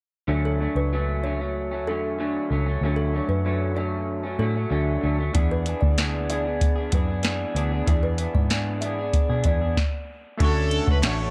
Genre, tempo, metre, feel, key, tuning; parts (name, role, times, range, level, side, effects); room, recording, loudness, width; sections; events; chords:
indie pop, bedroom pop; 95 BPM; 4/4; straight; D lydian; A4 = 440 Hz
electric guitar through a small old amp; accompaniment; 0.3-11.3 s; D3 to G#4; -30 LUFS; equal; lush chorus, vibrato effect
vintage muted picked electric bass; bass; 0.3-11.3 s; A1 to B2; -28 LUFS; equal
kalimba; second line; 0.5-9.6 s; A4 to E5; -36 LUFS; equal; subtle chorus, slapback echo
soft vintage rhythm box; drums; 5.3-11.2 s; hi-hat, kick drum, ride cymbal, snare drum; -25 LUFS; equal
overdriven slide guitar; melody; 10.4-11.1 s; A4 to C#5; -29 LUFS; equal; lush chorus, slapback echo
chorused retro synth keys; accompaniment; 10.4-11.3 s; A3 to C#5; -34 LUFS; equal; cassette tape
warm analog pad; sustained chords; 10.4-11.3 s; A4 to A5; -41 LUFS; equal
group handclap; percussion; 11.0-11.2 s; -41 LUFS; equal
light reverb, digital ambience; -24 LUFS; mono
0.3-10.4 A section
stop 9.8-10.4
0.3 Dmaj7; 5.3 E7; 10.4 Dmaj7